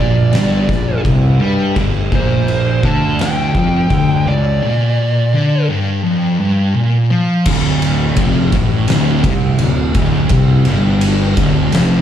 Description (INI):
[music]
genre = stoner and doom metal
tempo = 84 BPM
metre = 4/4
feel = straight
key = D minor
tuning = A4 = 440 Hz
[part]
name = fuzz lead guitar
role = melody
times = 0.0-5.7 s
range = C5 to A5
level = -21 LUFS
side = right 1 dB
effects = distortion, slapback echo, tape echo
[part]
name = thick fuzz guitar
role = riff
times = 0.0-12.0 s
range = D2 to G3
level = -16 LUFS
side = left 5 dB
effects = distortion
[part]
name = thick fuzz guitar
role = riff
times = 0.0-12.0 s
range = D2 to G3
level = -18 LUFS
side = right 8 dB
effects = distortion, slapback echo
[part]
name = fuzz fingered electric bass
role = bass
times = 0.0-12.0 s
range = D1 to G2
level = -18 LUFS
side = right 1 dB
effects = overdrive, tube saturation
[part]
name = oversized low-tuned drum kit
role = drums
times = 0.3-11.9 s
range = crash cymbal, kick drum, ride cymbal, snare drum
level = -18 LUFS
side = equal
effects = none
[sound]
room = light reverb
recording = live gig heard through the venue's PA, club reverb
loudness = -12 LUFS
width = side -10 dB against mid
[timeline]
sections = 0.0-7.5 A section; 7.5-12.0 B section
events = none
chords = 0.0 Bb5; 1.8 G5; 7.5 Dm